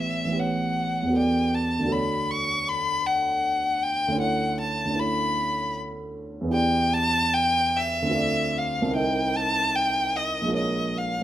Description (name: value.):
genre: classical, impressionist duo for violin and grand piano.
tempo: 77 BPM.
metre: 3/4.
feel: rubato.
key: unclear.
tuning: A4 = 445 Hz.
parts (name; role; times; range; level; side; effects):
warm violin; melody; 0.0-11.2 s; Eb5 to C#6; -24 LUFS; left 1 dB; none.
dark grand piano; accompaniment; 0.0-11.2 s; A1 to Eb5; -26 LUFS; right 2 dB; none.
room: light reverb.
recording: minimal, uncompressed stereo recording.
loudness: -22 LUFS.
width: side -12 dB against mid.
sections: 0.0-11.2 A section.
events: none.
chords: 0.0 A13; 1.2 Em11; 1.9 Dmaj7; 4.2 Bm11/D; 6.6 Em7; 8.2 Dm7; 9.0 Cm7; 10.6 Bbm7.